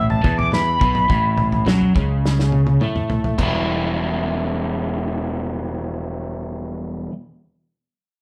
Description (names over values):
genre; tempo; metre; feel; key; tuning
psychedelic rock; 105 BPM; 4/4; straight; E dorian; A4 = 439 Hz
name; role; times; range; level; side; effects
expressive synth lead; melody; 0.0-1.6 s; A5 to D6; -22 LUFS; equal; chorus
crunchy overdriven guitar; riff; 0.0-7.1 s; E2 to E4; -24 LUFS; equal; none
picked electric bass; bass; 0.0-7.1 s; E1 to A2; -27 LUFS; equal; none
damped 70s drum kit; drums; 0.1-3.5 s; china cymbal, kick drum, snare drum, toms; -24 LUFS; equal; none
room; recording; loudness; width
wet studio reverb, RT60 0.8 s; band playing live in one room; -20 LUFS; mono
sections
0.0-3.4 A section; 3.4-5.7 B section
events
analog synth lead solo 0.0-3.4; drum fill 2.2-3.4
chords
0.0 B5; 3.4 Em